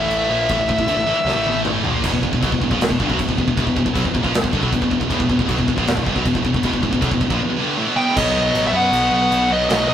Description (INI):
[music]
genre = heavy metal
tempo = 156 BPM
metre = 4/4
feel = straight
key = E minor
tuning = A4 = 440 Hz
[part]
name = high-gain lead guitar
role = melody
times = 0.0-1.6, 8.0-9.9 s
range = D#5 to G5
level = -18 LUFS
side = left 1 dB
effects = distortion
[part]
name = heavy high-gain guitar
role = riff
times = 0.0-9.9 s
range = E2 to B3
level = -22 LUFS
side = right 4 dB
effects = distortion
[part]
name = thick fuzz guitar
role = riff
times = 0.0-9.9 s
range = E2 to B3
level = -26 LUFS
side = equal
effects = distortion
[part]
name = tight distorted guitar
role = riff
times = 0.0-9.9 s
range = E2 to B3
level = -24 LUFS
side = left 5 dB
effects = distortion
[part]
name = growling picked electric bass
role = bass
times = 0.0-9.9 s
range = E1 to F#2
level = -26 LUFS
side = equal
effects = overdrive
[part]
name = big rock drum kit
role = drums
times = 0.1-9.8 s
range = china cymbal, crash cymbal, kick drum, snare drum, toms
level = -22 LUFS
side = equal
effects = none
[part]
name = high-gain lead guitar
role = second line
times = 8.0-9.9 s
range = F#3 to B3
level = -26 LUFS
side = right 2 dB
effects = distortion
[sound]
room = moderate stone room reverb, RT60 1.2 s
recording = rough rehearsal-room recording, tube saturation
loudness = -16 LUFS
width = side -10 dB against mid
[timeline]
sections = 0.0-2.0 A section; 2.0-8.2 B section; 8.2-9.9 C section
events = drum fill 1.3-2.0; half time 8.2-9.9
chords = 0.0 A5; 2.0 Em; 8.2 B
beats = 0.11 | 0.49 0.88 1.26 1.65 | 2.03 2.41 2.80 3.18 | 3.56 3.95 4.33 4.72 | 5.10 5.48 5.87 6.25 | 6.63 7.01 7.40 7.78 | 8.16 8.54 8.92 9.30 | 9.69